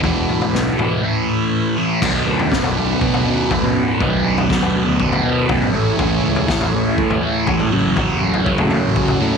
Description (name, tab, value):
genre	psychedelic rock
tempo	121 BPM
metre	4/4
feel	straight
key	B dorian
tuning	A4 = 442 Hz
part	combo organ	sustained chords	0.0-9.4 s	A3 to C#5	-26 LUFS	right 11 dB	none
part	thick fuzz guitar	riff	0.0-9.4 s	B1 to A3	-17 LUFS	equal	distortion, phaser
part	fuzz picked electric bass	bass	0.0-9.4 s	E1 to B2	-23 LUFS	equal	overdrive
part	raw garage drum kit	drums	0.0-9.2 s	crash cymbal, kick drum, snare drum, toms	-22 LUFS	left 3 dB	none
room	small room ambience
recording	1960s-style stereo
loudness	-15 LUFS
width	side -6 dB against mid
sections	0.0-2.0 A section; 2.0-9.4 B section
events	none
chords	0.0 E7sus4; 1.0 Aadd9; 2.0 Bm7; 5.7 Amaj7; 7.7 F#m7/A